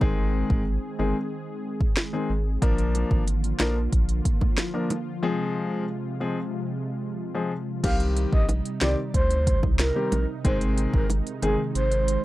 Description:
dancehall; 92 BPM; 4/4; straight; C minor; A4 = 441 Hz
warm concert grand piano; accompaniment; 0.0-11.6 s; Eb3 to Bb4; -28 LUFS; left 3 dB
warm analog pad; sustained chords; 0.0-12.2 s; C3 to Ab4; -32 LUFS; right 1 dB; chorus, sidechain pumping
saturated sub bass; bass; 0.0-12.2 s; G1 to D2; -26 LUFS; equal
afro-pop drum kit; drums; 0.0-12.2 s; crash cymbal, hi-hat, kick drum, rim click, snare drum; -24 LUFS; equal
bongos; percussion; 3.0-11.6 s; -33 LUFS; right 2 dB
breathy flute-like synth lead; melody; 7.8-12.2 s; Ab4 to F5; -28 LUFS; right 1 dB; chorus, digital delay
little or no reverb; dark, warm production; -23 LUFS; side -16 dB against mid
0.0-7.8 A section; 7.8-12.2 B section
break 5.2-7.8
0.0 Ab; 2.6 Bb; 5.2 Fm; 7.8 Cm; 10.4 Ab

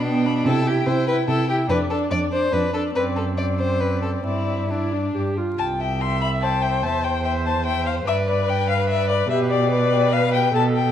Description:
quick classical-period movement for string quartet; 144 BPM; 3/4; rubato; C major; A4 = 440 Hz
rich violin; melody; 0.0-10.9 s; D5 to C6; -25 LUFS; left 7 dB
rich violin; second line; 0.0-10.5 s; D4 to G5; -26 LUFS; left 2 dB
warm viola; accompaniment; 0.0-10.9 s; B3 to E5; -25 LUFS; right 2 dB
clear cello; bass; 0.0-10.9 s; C2 to C3; -23 LUFS; right 2 dB
moderate recital hall reverb, RT60 1.4 s; vinyl crackle; -19 LUFS; side -10 dB against mid
0.0-5.6 A section; 5.6-10.9 A section
0.5 C; 1.7 Dm/F; 2.9 D7/F#; 4.2 Gsus4; 5.1 G5; 5.6 C; 6.8 C/E; 8.1 G; 9.3 G/B

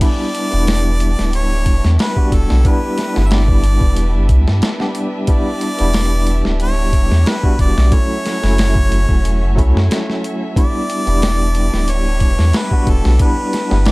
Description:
trip hop; 91 BPM; 4/4; straight; E dorian; A4 = 439 Hz
bright harmonica; melody; 0.0-13.9 s; A4 to E5; -23 LUFS; equal; tape echo
tine electric piano; accompaniment; 0.0-13.9 s; F#3 to G4; -21 LUFS; equal; overdrive, tremolo
rich chamber violin section; sustained chords; 0.0-13.9 s; C#4 to E5; -29 LUFS; right 1 dB
boom bap sampler-style drum kit; drums; 0.0-13.9 s; crash cymbal, hi-hat, kick drum, snare drum; -16 LUFS; equal; studio ambience
warm sub bass; bass; 0.5-13.9 s; D1 to G2; -14 LUFS; equal
little or no reverb; dark, warm production; -13 LUFS; side -23 dB against mid
0.0-13.9 A section
0.0 Em7; 2.7 G6; 5.3 Em7; 7.9 F#m7; 10.6 Em7; 13.2 G6

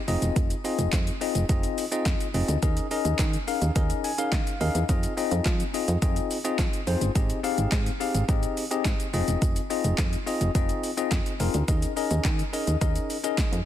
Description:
dance-pop; 106 BPM; 4/4; straight; F minor; A4 = 442 Hz
bell-like tine electric piano; accompaniment; 0.1-13.6 s; C4 to Ab5; -28 LUFS; left 4 dB; slow stereo tremolo, sidechain pumping
solid FM bass; bass; 0.1-13.6 s; E1 to F3; -27 LUFS; right 1 dB; sidechain pumping
deep house drum kit; drums; 0.1-13.7 s; handclaps, hi-hat, kick drum, shaker, snare drum; -27 LUFS; right 1 dB; overdrive
light reverb; dense, heavily limited modern master; -23 LUFS; side -11 dB against mid
0.0-13.7 A section
tine electric piano fill 3.8-4.9
0.1 Fm7; 2.6 Eb7sus4; 4.9 Fm7; 7.2 Abmaj7; 9.1 Fm7; 11.7 Eb7sus4

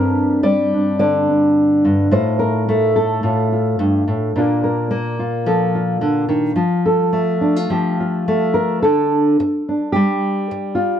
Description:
folk, solo fingerstyle acoustic guitar; 108 BPM; 4/4; straight; A4 = 443 Hz
nylon-string guitar; solo; 0.0-11.0 s; G2 to D5; -15 LUFS; equal
studio ambience; dry, close 1970s-style studio recording; -15 LUFS; side -9 dB against mid
0.0-8.8 A section; 8.8-11.0 B section
0.0 Gm; 2.1 F7/A; 4.4 Bb; 6.6 F; 8.8 Dsus4

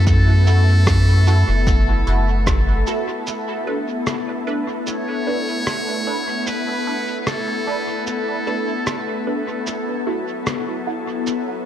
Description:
ambient dub; 75 BPM; 4/4; straight; B minor; A4 = 439 Hz
trumpet with metal mute; melody; 0.0-9.2 s; A4 to C#5; -27 LUFS; equal; dub echo
soft additive organ-like pad; sustained chords; 0.0-11.7 s; F#3 to A4; -24 LUFS; left 2 dB; ensemble chorus, built-in reverb
round analog bass; bass; 0.0-2.8 s; F#1 to F#2; -14 LUFS; equal
electronic cabasa and rim click; drums; 0.1-11.4 s; -28 LUFS; right 1 dB; dub echo
electronic kick drum; drums; 0.1-2.6 s; -19 LUFS; equal; overdrive
filtered dub chord stab; stabs; 0.5-11.0 s; D4 to B4; -28 LUFS; right 2 dB; phaser, analog chorus, dub echo
light reverb, digital ambience; -17 LUFS; side -11 dB against mid
0.0-3.3 A section; 3.3-11.7 B section
0.0 F#m7; 3.3 Bm7; 9.7 F#m7

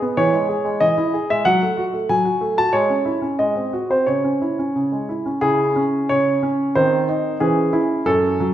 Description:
classical-period piano sonatina; 91 BPM; 2/4; uneven beats; C# minor; A4 = 439 Hz
warm grand piano; solo; 0.0-8.5 s; F#2 to A5; -17 LUFS; equal
wet recital hall reverb, RT60 1.6 s; minimal, uncompressed stereo recording; -17 LUFS; side -11 dB against mid
0.0-5.4 A section; 5.4-8.5 B section
0.2 C#m/E; 1.5 F#m; 2.7 C#m/G#; 3.4 G#7; 4.1 C#m; 6.8 Cm/Eb; 7.4 C#m/E

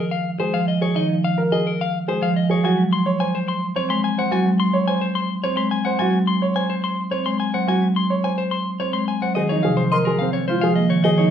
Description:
classical, minimalist pattern music; 107 BPM; 3/4; straight; A4 = 440 Hz
clean electric guitar; melody; 0.0-11.3 s; Bb4 to C6; -25 LUFS; left 6 dB
marimba with medium mallets; accompaniment; 0.4-11.3 s; C3 to C4; -20 LUFS; right 1 dB
clear grand piano; arpeggios; 0.4-11.3 s; C4 to Db5; -24 LUFS; right 3 dB
bright silver concert flute; arpeggios; 9.4-11.1 s; Eb5 to C6; -26 LUFS; left 2 dB
wet large studio reverb, RT60 0.9 s; heard from further back in the room, nothing above 11.0 kHz; -18 LUFS; side -9 dB against mid
0.0-9.4 A section; 9.4-11.3 B section
0.0 Dbadd9 (rootless); 2.6 Gbsus2; 9.4 Bbm9

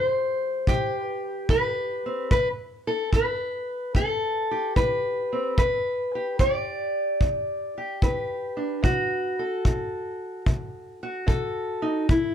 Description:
acoustic country blues, solo or duo; 74 BPM; 4/4; swing 67% on 8ths; A4 = 439 Hz
fingerpicked steel-string acoustic guitar; melody; 0.0-12.3 s; E2 to D5; -25 LUFS; equal
kick drum; drums; 0.7-12.3 s; -24 LUFS; equal
light reverb; close, detailed microphones; -23 LUFS; side -9 dB against mid
0.0-12.3 A section
0.0 Am7; 5.6 Em7; 8.8 B7(no3)

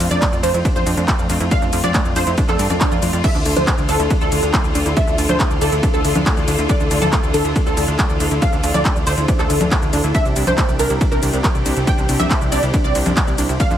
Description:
uplifting trance; 139 BPM; 4/4; straight; D minor; A4 = 438 Hz
wide unison pluck; melody; 0.0-13.8 s; A4 to G5; -22 LUFS; right 1 dB; ensemble chorus, sidechain pumping, tape echo
bright studio string section; sustained chords; 0.0-13.8 s; C3 to A4; -24 LUFS; equal; sidechain pumping
wide unison pluck; arpeggios; 0.0-13.8 s; A3 to D5; -26 LUFS; right 3 dB; lush chorus, sidechain pumping, tape echo
plucky analog bass; bass; 0.0-13.8 s; C2 to G2; -21 LUFS; equal; sidechain pumping
big-room dance drum kit; drums; 0.0-13.8 s; congas, crash cymbal, handclaps, hi-hat, ride cymbal, shaker; -23 LUFS; left 1 dB; overdrive
electronic kick drum; drums; 0.2-13.7 s; -19 LUFS; equal; overdrive
swell; sound effects; 2.5-3.2 s; -28 LUFS; right 3 dB
light reverb, digital ambience; -14 LUFS; side -10 dB against mid
0.0-13.8 A section
swell 2.5-3.2
0.0 F; 3.2 Dmadd9; 10.1 Cadd9

